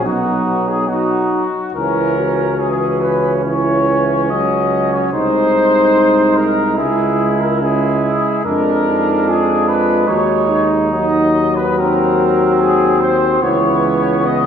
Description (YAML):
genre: classical, hymn-like piece for brass band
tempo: 72 BPM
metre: 4/4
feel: rubato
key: unclear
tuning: A4 = 440 Hz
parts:
  - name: mellow trumpet section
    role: melody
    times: 0.0-14.5 s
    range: F#4 to D#5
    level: -18 LUFS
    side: left 4 dB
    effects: none
  - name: clear flugelhorn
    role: second line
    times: 0.0-14.5 s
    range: B3 to E4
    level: -20 LUFS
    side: right 6 dB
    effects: none
  - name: mellow euphonium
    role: accompaniment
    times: 0.0-14.5 s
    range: B3 to F#4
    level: -20 LUFS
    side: left 2 dB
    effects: none
  - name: clear tuba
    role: bass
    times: 0.0-14.5 s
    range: B1 to E#2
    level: -21 LUFS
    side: equal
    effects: none
  - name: brilliant trombone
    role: accompaniment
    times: 0.1-14.5 s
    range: E3 to G#3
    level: -21 LUFS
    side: right 3 dB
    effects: none
room: wet concert hall reverb, RT60 1.8 s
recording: recorded in a church or concert hall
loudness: -12 LUFS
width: side -8 dB against mid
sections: 0.0-14.5 A section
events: none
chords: 0.1 B; 1.7 C#m; 5.1 G#/B#; 6.8 C#m; 8.5 A#7/E#; 10.1 D#m; 11.8 D#m6; 13.4 C#m7